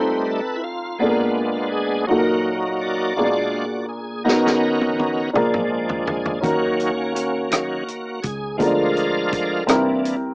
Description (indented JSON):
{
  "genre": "slow gospel",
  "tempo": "55 BPM (dotted quarters)",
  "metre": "6/8",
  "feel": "straight",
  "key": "Eb minor",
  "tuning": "A4 = 440 Hz",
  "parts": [
    { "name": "warm upright piano", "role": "accompaniment", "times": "0.0-10.3 s", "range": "Bb2 to Bb4", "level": "-21 LUFS", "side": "equal", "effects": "cassette tape" },
    { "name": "bright tonewheel organ", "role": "sustained chords", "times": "0.0-10.2 s", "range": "D#3 to D5", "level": "-22 LUFS", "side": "equal", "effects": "slow rotary speaker, overdrive, chorus vibrato, cassette tape" },
    { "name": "warm soul drum kit", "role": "drums", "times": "4.3-10.2 s", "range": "hi-hat, kick drum, rim click, snare drum, toms", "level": "-24 LUFS", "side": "equal", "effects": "cassette tape" },
    { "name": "fingered electric bass", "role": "bass", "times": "6.4-10.3 s", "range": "C2 to Eb2", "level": "-31 LUFS", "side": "equal", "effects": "none" }
  ],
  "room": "light reverb",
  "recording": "home recording on cassette, small speaker sound",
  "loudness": "-18 LUFS",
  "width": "side -30 dB against mid",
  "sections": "0.0-10.3 A section",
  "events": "tonewheel organ solo 0.0-10.3; drum fill 4.3-6.4",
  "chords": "0.0 F7; 1.0 Bb7b9; 2.1 Ebm/Bb; 3.2 Bb7; 4.3 Bmaj7; 5.3 Bb7; 6.4 Ebm7; 8.6 Bb7/D; 9.7 C7",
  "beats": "1.02 | 2.10 3.18 | 4.27 5.35 | 6.43 7.52 | 8.60 9.69"
}